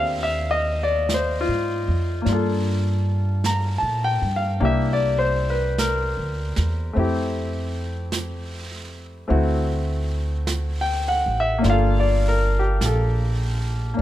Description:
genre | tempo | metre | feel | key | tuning
jazz ballad | 51 BPM | 4/4 | swing 67% on 8ths | unclear | A4 = 436 Hz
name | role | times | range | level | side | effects
clear concert grand piano | accompaniment | 0.0-14.0 s | A3 to Bb5 | -23 LUFS | left 2 dB | none
upright bass | bass | 0.0-14.0 s | G1 to Bb2 | -23 LUFS | equal | none
jazz brush drum kit | drums | 1.1-14.0 s | brushed snare drum, hi-hat, snare drum | -33 LUFS | right 4 dB | none
room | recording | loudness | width
little or no reverb | close, detailed microphones | -20 LUFS | side -13 dB against mid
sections
0.0-14.0 A section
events
none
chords
0.0 Ab69; 2.3 Gm7; 4.6 C9; 7.0 Fmaj9; 9.3 D7; 11.6 Gm7

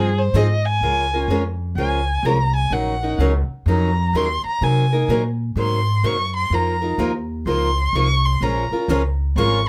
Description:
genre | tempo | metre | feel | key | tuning
acoustic string swing (jazz manouche) | 126 BPM | 4/4 | swing 64% on 8ths | Bb minor | A4 = 441 Hz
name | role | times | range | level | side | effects
dark violin | melody | 0.0-9.7 s | Ab4 to Db6 | -25 LUFS | equal | none
picked steel-string acoustic guitar | accompaniment | 0.0-9.6 s | C3 to Bb4 | -25 LUFS | equal | none
picked steel-string acoustic guitar | accompaniment | 0.0-0.5, 8.4-9.6 s | F3 to Bb4 | -29 LUFS | equal | none
upright bass | bass | 0.0-9.7 s | Ab1 to C3 | -23 LUFS | equal | none
room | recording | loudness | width
little or no reverb | close, detailed microphones | -20 LUFS | mono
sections
0.8-9.7 A section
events
violin solo 0.0-9.7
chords
0.0 Fm7; 0.8 Bbm7; 2.7 Ebm7/Bb; 4.6 Cm7b5; 6.5 F7sus4; 8.4 Bbm7

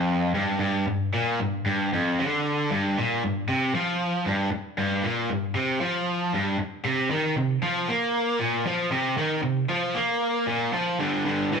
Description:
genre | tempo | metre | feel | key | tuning
rock | 116 BPM | 4/4 | straight | unclear | A4 = 440 Hz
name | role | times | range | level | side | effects
cranked stack guitar | solo | 0.0-11.6 s | F2 to Bb3 | -23 LUFS | equal | overdrive
room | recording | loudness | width
moderate large studio reverb, RT60 1.2 s | band playing live in one room | -23 LUFS | side -5 dB against mid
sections
0.0-2.7 A section; 2.7-11.0 B section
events
none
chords
0.0 G5; 2.7 Gm7; 6.8 Bbsus24; 11.0 G5

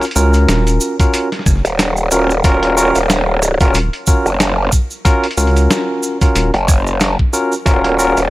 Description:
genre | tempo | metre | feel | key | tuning
glitch hop | 92 BPM | 4/4 | swing 56% on 16ths | Eb minor | A4 = 440 Hz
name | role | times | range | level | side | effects
barky tine electric piano | stabs | 0.0-8.2 s | Db4 to Bb4 | -16 LUFS | equal | medium stereo tremolo, sidechain pumping, tape echo
boom bap sampler-style drum kit | drums | 0.0-8.3 s | hi-hat, rim click, snare drum | -20 LUFS | equal | none
cabasa | percussion | 0.0-8.3 s | none | -23 LUFS | right 3 dB | none
rubbery square bass | bass | 0.2-6.5 s | Eb1 to Db2 | -13 LUFS | equal | none
electronic kick drum | drums | 1.0-7.8 s | none | -13 LUFS | equal | none
growl bass | bass | 1.6-8.3 s | Eb1 to Gb1 | -15 LUFS | equal | chorus, overdrive
room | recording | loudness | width
digital ambience | none | -11 LUFS | side -18 dB against mid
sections
0.0-8.3 A section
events
none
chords
0.0 Ebm7

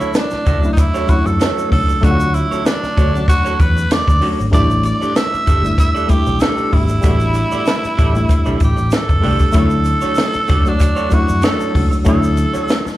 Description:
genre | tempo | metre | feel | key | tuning
lush 1970s-style soul | 96 BPM | 4/4 | swing 54% on 16ths | D major | A4 = 440 Hz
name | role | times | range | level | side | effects
raspy tenor saxophone | melody | 0.0-12.9 s | D4 to E5 | -20 LUFS | right 1 dB | plate reverb, slapback echo, tape echo
reed electric piano | accompaniment | 0.0-13.0 s | F#3 to C#5 | -21 LUFS | left 2 dB | overdrive, slapback echo
electric guitar through a small old amp | riff | 0.0-12.9 s | A3 to E5 | -25 LUFS | right 5 dB | wide subtle chorus, slapback echo
fingered electric bass | bass | 0.0-12.9 s | F#1 to F#2 | -18 LUFS | equal | none
tube shaker | percussion | 0.0-13.0 s | none | -40 LUFS | left 4 dB | none
compact cocktail drum kit | drums | 0.1-12.9 s | hi-hat, kick drum, snare drum | -15 LUFS | equal | none
room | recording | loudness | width
light reverb | live gig heard through the venue's PA, club reverb | -13 LUFS | side -15 dB against mid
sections
0.0-9.6 A section; 9.6-13.0 A section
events
none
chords
0.0 Dmaj7; 4.5 A7sus4; 9.6 Dmaj7

